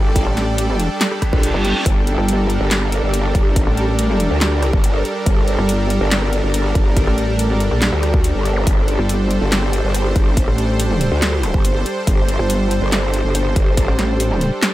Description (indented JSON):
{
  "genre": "heavy wobble dubstep",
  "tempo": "141 BPM",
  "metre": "4/4",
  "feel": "half-time",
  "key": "G minor",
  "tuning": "A4 = 439 Hz",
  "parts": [
    { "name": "supersaw pad", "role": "sustained chords", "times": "0.0-14.7 s", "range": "G3 to D5", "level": "-23 LUFS", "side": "right 2 dB", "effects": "sidechain pumping" },
    { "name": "growl bass", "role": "bass", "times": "0.0-13.9 s", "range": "G1 to D2", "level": "-18 LUFS", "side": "equal", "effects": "chorus, overdrive" },
    { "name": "airy breathy pad", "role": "texture", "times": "0.0-14.7 s", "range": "G4 to G5", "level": "-27 LUFS", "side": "equal", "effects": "chorus, sidechain pumping" },
    { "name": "big-room dance drum kit", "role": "drums", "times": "0.2-14.7 s", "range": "handclaps, hi-hat, rim click, snare drum", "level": "-21 LUFS", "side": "equal", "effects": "studio ambience" },
    { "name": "electronic kick drum", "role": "drums", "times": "0.2-13.9 s", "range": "none", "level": "-16 LUFS", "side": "equal", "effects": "studio ambience" },
    { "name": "pulsing pluck wobble bass", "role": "bass", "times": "0.3-14.5 s", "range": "G1 to Bb1", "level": "-17 LUFS", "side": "equal", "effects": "chorus, overdrive" },
    { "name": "reverse cymbal and zap", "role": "sound effects", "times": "1.2-1.9, 8.6-8.7 s", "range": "none", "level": "-26 LUFS", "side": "right 1 dB", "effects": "none" }
  ],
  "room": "little or no reverb",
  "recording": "none",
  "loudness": "-15 LUFS",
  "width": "side -15 dB against mid",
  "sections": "0.0-14.7 A section",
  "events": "reverse cymbal 1.2-1.9",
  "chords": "0.0 Gmadd9",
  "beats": "| 0.16 0.58 1.01 1.43 | 1.86 2.29 2.71 3.14 | 3.56 3.99 4.41 4.84 | 5.26 5.69 6.12 6.54 | 6.97 7.39 7.82 8.24 | 8.67 9.09 9.52 9.95 | 10.37 10.80 11.22 11.65 | 12.07 12.50 12.92 13.35 | 13.77 14.20 14.62"
}